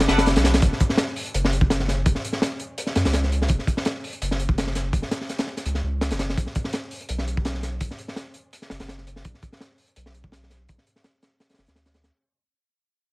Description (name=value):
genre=drum and bass, jungle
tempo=167 BPM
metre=4/4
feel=straight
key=F# minor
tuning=A4 = 440 Hz
part: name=soft string machine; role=sustained chords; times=0.1-0.6 s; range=A3 to F#4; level=-39 LUFS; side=equal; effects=none
part: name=saturated sub bass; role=bass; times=0.0-12.1 s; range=F#1 to F#2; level=-25 LUFS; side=equal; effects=none
part: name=crunchy breakbeat drum kit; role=drums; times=0.0-12.1 s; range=hi-hat, kick drum, snare drum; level=-23 LUFS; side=equal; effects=none
room=small room ambience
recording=vinyl crackle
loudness=-21 LUFS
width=side -22 dB against mid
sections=0.6-12.1 A section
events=fade-out 0.6-12.1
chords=0.0 Bm7; 0.6 F#5; 6.4 B5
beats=0.26 | 0.62 0.98 1.34 1.70 | 2.06 2.42 2.78 3.14 | 3.50 3.86 4.22 4.58 | 4.93 5.29 5.65 6.01 | 6.37 6.73 7.09 7.45 | 7.81 8.17 8.53 8.89 | 9.25 9.61 9.96 10.32 | 10.68 11.04 11.40 11.76